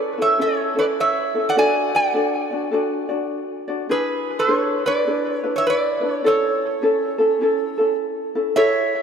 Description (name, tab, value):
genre	hawaiian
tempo	103 BPM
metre	4/4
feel	swing 63% on 8ths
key	A major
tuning	A4 = 440 Hz
part	metal-body resonator slide guitar	melody	0.0-9.0 s	G#4 to G#5	-20 LUFS	right 1 dB	analog delay
part	ukulele	accompaniment	0.0-9.0 s	C#4 to D5	-21 LUFS	equal	none
room	wet plate reverb, RT60 3.2 s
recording	dreamy mix soaked in reverb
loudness	-18 LUFS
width	side -7 dB against mid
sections	0.0-8.6 A section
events	none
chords	0.0 Amaj7; 1.6 D; 3.9 E7; 6.2 Amaj7